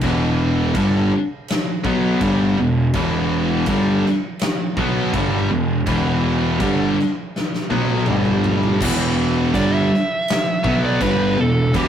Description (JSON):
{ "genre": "stoner and doom metal", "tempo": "82 BPM", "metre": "4/4", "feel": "straight", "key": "E minor", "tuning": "A4 = 440 Hz", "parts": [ { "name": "thick fuzz guitar", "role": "riff", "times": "0.0-11.9 s", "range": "E2 to B3", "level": "-21 LUFS", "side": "left 4 dB", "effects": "distortion" }, { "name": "thick fuzz guitar", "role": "riff", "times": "0.0-11.9 s", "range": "E2 to B3", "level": "-23 LUFS", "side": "right 6 dB", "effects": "distortion" }, { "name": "tight distorted guitar", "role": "riff", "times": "0.0-11.9 s", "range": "E2 to B3", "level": "-23 LUFS", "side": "right 1 dB", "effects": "distortion" }, { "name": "fuzz picked electric bass", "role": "bass", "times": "0.0-11.9 s", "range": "E1 to B1", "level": "-23 LUFS", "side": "equal", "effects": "overdrive" }, { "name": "big rock drum kit", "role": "drums", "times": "0.0-11.9 s", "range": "crash cymbal, kick drum, snare drum, toms", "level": "-25 LUFS", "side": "equal", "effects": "none" }, { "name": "fuzz lead guitar", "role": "melody", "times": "9.5-11.9 s", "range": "G4 to E5", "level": "-22 LUFS", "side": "right 2 dB", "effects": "distortion" } ], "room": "light reverb", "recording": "rough rehearsal-room recording, warm saturation", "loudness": "-16 LUFS", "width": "side -9 dB against mid", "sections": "0.0-8.8 A section; 8.8-11.9 B section", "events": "drum fill 7.3-8.8; lead electric guitar solo 8.8-11.9", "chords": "0.0 Em; 8.1 G5; 8.8 Em" }